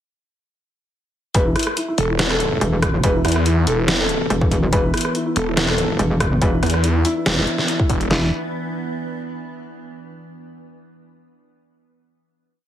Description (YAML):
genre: heavy wobble dubstep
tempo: 142 BPM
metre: 4/4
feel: half-time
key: unclear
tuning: A4 = 440 Hz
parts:
  - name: dark grand piano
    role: melody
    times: 1.3-8.3 s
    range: E4 to B4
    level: -24 LUFS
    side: equal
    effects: ping-pong delay
  - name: evolving wavetable pad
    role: sustained chords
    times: 1.9-8.3 s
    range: E3 to E4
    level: -28 LUFS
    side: left 1 dB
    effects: chorus, built-in reverb, sidechain pumping
  - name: metallic wobble bass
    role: bass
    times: 1.3-8.3 s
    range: E1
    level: -19 LUFS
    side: equal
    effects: chorus, overdrive
  - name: dubstep drum kit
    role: drums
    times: 1.3-8.2 s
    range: kick drum, snare drum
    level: -21 LUFS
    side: equal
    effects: none
  - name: dubstep drum kit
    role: drums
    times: 1.3-8.1 s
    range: hi-hat, rim click, snare drum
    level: -22 LUFS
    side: equal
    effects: none
  - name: snarling distorted saw bass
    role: bass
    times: 2.0-8.1 s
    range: E1 to E2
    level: -20 LUFS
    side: equal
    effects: overdrive
room: light reverb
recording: heavily compressed radio sound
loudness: -16 LUFS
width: side -11 dB against mid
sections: 1.3-8.1 drop; 8.1-9.8 final chord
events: drop 1.3-8.1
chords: 1.3 E5